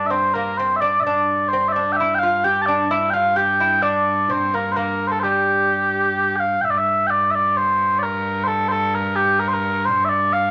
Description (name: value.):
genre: medieval dance.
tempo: 129 BPM.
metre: 3/4.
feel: straight.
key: G dorian.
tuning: A4 = 440 Hz.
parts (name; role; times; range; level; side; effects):
mellow small bagpipes; melody; 0.0-10.5 s; G4 to A5; -20 LUFS; equal; none.
lute; second line; 0.0-6.1 s; G3 to G4; -27 LUFS; equal; none.
rich viola da gamba; drone; 0.0-10.5 s; G2; -31 LUFS; equal; none.
room: wet studio reverb, RT60 0.8 s.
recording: none.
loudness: -19 LUFS.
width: mono.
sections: 0.0-6.6 A section; 6.6-10.5 B section.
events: none.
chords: none.